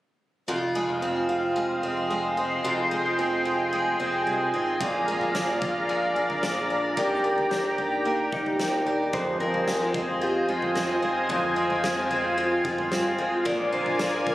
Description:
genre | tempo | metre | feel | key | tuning
dream pop | 111 BPM | 4/4 | straight | F dorian | A4 = 440 Hz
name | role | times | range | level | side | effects
lush unison pad | sustained chords | 0.5-14.3 s | F4 to C6 | -26 LUFS | equal | chorus, shimmer reverb
picked twelve-string acoustic guitar | arpeggios | 0.5-14.3 s | F2 to G4 | -28 LUFS | equal | lush chorus, ping-pong delay, shimmer reverb
chorused synth bass | bass | 0.5-14.3 s | F1 to Bb2 | -37 LUFS | equal | none
huge arena drum kit | drums | 4.8-14.3 s | kick drum, snare drum, toms | -34 LUFS | equal | none
clean lap steel guitar | melody | 8.3-14.3 s | Eb4 to D5 | -30 LUFS | equal | ping-pong delay
room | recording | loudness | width
moderate plate reverb, RT60 2.8 s | recorded on a phone in the room, studio reverb | -23 LUFS | side -15 dB against mid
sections
0.5-9.1 A section; 9.1-14.3 B section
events
none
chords
0.5 Fm7; 4.8 Bb7; 7.0 Ebmaj7; 9.1 Fm7; 13.5 Bb7

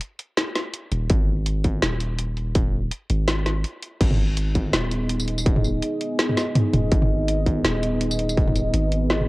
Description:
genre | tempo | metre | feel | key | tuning
half-time drum and bass | 165 BPM | 4/4 | swing 56% on 16ths, half-time | G# minor | A4 = 442 Hz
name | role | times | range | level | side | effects
drum and bass drum kit | drums | 0.0-9.3 s | crash cymbal, hi-hat, snare drum, tambourine, toms | -24 LUFS | equal | cassette tape
long sustained 808-style bass | bass | 0.9-9.3 s | D#1 to G#1 | -24 LUFS | equal | tube saturation
electronic kick drum | drums | 1.1-8.5 s | none | -22 LUFS | equal | distortion, overdrive, cassette tape
dark analog pad | sustained chords | 4.5-9.3 s | B3 to D#5 | -25 LUFS | equal | chorus, sidechain pumping
room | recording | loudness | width
light reverb | home recording on cassette | -20 LUFS | side -21 dB against mid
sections
0.0-9.3 A section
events
break 3.6-4.0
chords
0.0 G#m

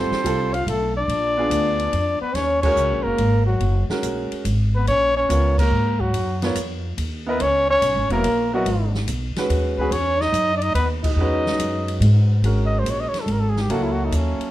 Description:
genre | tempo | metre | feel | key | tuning
modal jazz | 143 BPM | 3/4 | swing 68% on 8ths | Eb phrygian | A4 = 442 Hz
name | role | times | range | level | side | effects
breathy trumpet | melody | 0.0-14.5 s | C#4 to F5 | -22 LUFS | equal | none
clear trombone | second line | 0.0-12.0 s | Gb3 to F4 | -27 LUFS | left 3 dB | none
bright upright piano | accompaniment | 0.0-14.5 s | Gb3 to Eb5 | -26 LUFS | right 1 dB | none
upright bass | bass | 0.0-14.4 s | Fb1 to Ab2 | -22 LUFS | equal | none
open jazz drum kit | drums | 0.1-14.5 s | crash cymbal, hi-hat, kick drum, ride cymbal, snare drum | -31 LUFS | equal | none
room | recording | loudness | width
light reverb | dark, warm production | -18 LUFS | side -14 dB against mid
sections
0.0-2.3 A section; 2.3-12.4 B section; 12.4-14.5 C section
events
band accent 2.6, 5.5, 11.0; trumpet solo 12.4-14.5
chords
0.0 G9sus4; 1.1 A#7b9; 2.3 Ebm11; 7.4 Dbm11; 12.4 G#9sus4

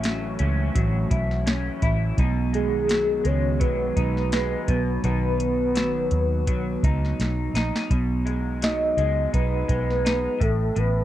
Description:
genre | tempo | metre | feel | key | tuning
indie pop, bedroom pop | 84 BPM | 4/4 | swing 55% on 16ths | B mixolydian | A4 = 440 Hz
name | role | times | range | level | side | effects
electric guitar through a small old amp | accompaniment | 0.0-11.0 s | A2 to E4 | -29 LUFS | equal | analog chorus, warbly pitch drift
phased analog pad | sustained chords | 0.0-7.9 s | D#3 to F#4 | -34 LUFS | right 1 dB | phaser, chorus
vintage muted fingered electric bass | bass | 0.0-11.0 s | A1 to D#2 | -25 LUFS | equal | none
soft vintage rhythm box | drums | 0.0-10.9 s | hi-hat, kick drum, snare drum | -26 LUFS | equal | overdrive
soft octave-layered synth lead | melody | 2.5-11.0 s | G#4 to D#5 | -26 LUFS | equal | tremolo, lush chorus, tape echo
room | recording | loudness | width
little or no reverb | dry, close 1970s-style studio recording | -21 LUFS | side -13 dB against mid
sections
0.0-7.9 A section; 7.9-11.0 B section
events
drum fill 7.2-7.9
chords
0.0 A6; 2.2 B6; 4.7 B; 7.9 B6; 10.4 A5

